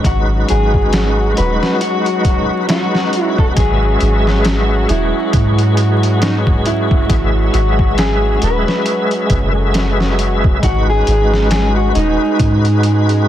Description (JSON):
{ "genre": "trip hop", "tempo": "68 BPM", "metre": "4/4", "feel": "swing 57% on 16ths", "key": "G# minor", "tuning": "A4 = 440 Hz", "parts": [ { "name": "tonewheel organ", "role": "accompaniment", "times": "0.0-13.3 s", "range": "G#3 to E5", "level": "-20 LUFS", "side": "equal", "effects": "chorus vibrato, fast rotary speaker, tremolo, tape echo" }, { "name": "muted chamber string section", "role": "sustained chords", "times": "0.0-13.3 s", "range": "F#3 to G#4", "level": "-23 LUFS", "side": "left 2 dB", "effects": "vintage 12-bit sampler grit" }, { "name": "trip hop sampler-style drum kit", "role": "drums", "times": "0.0-13.3 s", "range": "hi-hat, kick drum, snare drum", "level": "-17 LUFS", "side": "equal", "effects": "vintage 12-bit sampler grit" }, { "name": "bowed-like drone", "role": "texture", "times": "0.0-13.3 s", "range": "C#4", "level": "-30 LUFS", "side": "right 2 dB", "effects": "none" }, { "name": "electric guitar at the edge of break-up", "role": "melody", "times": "0.1-13.3 s", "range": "D#4 to B4", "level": "-19 LUFS", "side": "right 1 dB", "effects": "tape echo" }, { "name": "soft 808-style bass", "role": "bass", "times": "0.1-13.3 s", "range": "D#1 to G#2", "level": "-15 LUFS", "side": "equal", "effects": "none" } ], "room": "little or no reverb", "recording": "dense, heavily limited modern master, vinyl crackle", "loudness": "-12 LUFS", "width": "side -11 dB against mid", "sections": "0.0-13.3 A section", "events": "none", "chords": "0.0 G#m7; 3.6 E; 10.6 G#m7" }